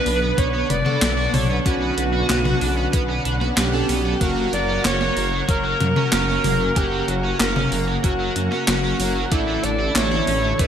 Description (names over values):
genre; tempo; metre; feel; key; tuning
synthwave; 94 BPM; 4/4; straight; B minor; A4 = 436 Hz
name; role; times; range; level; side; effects
clear alto saxophone; melody; 0.0-10.7 s; E4 to D5; -24 LUFS; equal; digital delay
analog string pad; sustained chords; 0.0-10.7 s; C#3 to F#5; -29 LUFS; equal; ensemble chorus, sidechain pumping
cranked stack guitar; riff; 0.0-10.7 s; F#3 to B4; -29 LUFS; right 2 dB; overdrive, analog chorus, ping-pong delay
chorused polysynth; stabs; 0.0-10.7 s; A#3 to F#5; -27 LUFS; right 3 dB; none
dark detuned saw bass; bass; 0.1-10.7 s; F#1 to F#2; -24 LUFS; equal; sidechain pumping
clean 12-bit digital drum machine; drums; 0.1-10.7 s; handclaps, hi-hat, snare drum, toms; -24 LUFS; left 1 dB; overdrive, gated reverb
electronic kick drum; drums; 0.4-10.7 s; none; -21 LUFS; equal; overdrive
room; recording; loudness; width
moderate lush hall reverb, RT60 2.5 s; bright 1980s-style digital production; -18 LUFS; side -8 dB against mid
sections
0.0-10.7 A section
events
none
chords
0.0 Bmadd9; 4.2 F#; 9.3 Asus4